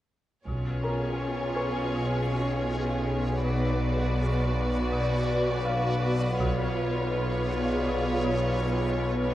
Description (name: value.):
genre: cinematic, suspense film score.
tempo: 81 BPM.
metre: 4/4.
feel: straight.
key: unclear.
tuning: A4 = 441 Hz.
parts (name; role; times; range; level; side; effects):
rich studio violin section; second line; 0.5-9.3 s; G#4 to D5; -32 LUFS; left 2 dB; none.
rich studio viola section; accompaniment; 0.5-9.3 s; B3 to F#4; -33 LUFS; right 2 dB; none.
backwards swelling texture; sustained chords; 2.0-9.3 s; F#4 to E#5; -34 LUFS; equal; built-in reverb.
marimba with hard mallets; riff; 0.5-9.2 s; B2 to B3; -31 LUFS; left 2 dB; none.
clear studio cello section; bass; 0.5-9.3 s; B2; -35 LUFS; right 1 dB; none.
rich studio double bass section; bass; 0.5-1.2, 6.4-7.1 s; B1; -37 LUFS; right 3 dB; none.
overtone-sweeping drone; drone; 1.2-9.3 s; B1; -32 LUFS; equal; chorus, built-in reverb, phaser.
taiko ensemble; drums; 0.5-1.9, 6.4-7.8 s; none; -38 LUFS; equal; none.
felt-muted upright piano; texture; 0.8-9.3 s; A#4 to C#6; -37 LUFS; equal; none.
room: moderate scoring stage reverb, RT60 1.6 s.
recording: worn, warbling old tape, cassette tape, warbly pitch drift.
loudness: -25 LUFS.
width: side -14 dB against mid.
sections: 0.5-9.3 A section.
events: none.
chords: 0.5 C#7/B; 3.4 Bm; 6.4 C#7/B.